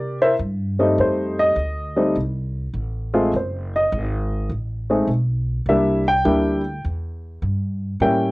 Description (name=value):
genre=jazz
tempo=103 BPM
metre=4/4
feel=swing 67% on 8ths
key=unclear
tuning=A4 = 441 Hz
part: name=warm baby grand piano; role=melody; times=0.0-8.3 s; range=G3 to G5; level=-18 LUFS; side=equal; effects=cassette tape
part: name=upright bass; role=bass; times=0.0-8.3 s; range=F#1 to C3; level=-24 LUFS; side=equal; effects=none
room=moderate booth ambience, RT60 0.2 s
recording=home recording on cassette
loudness=-19 LUFS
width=side -22 dB against mid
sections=0.0-8.3 A section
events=grand piano solo 0.0-8.3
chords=0.0 C7; 1.0 F9; 3.3 F#dim7; 5.7 C9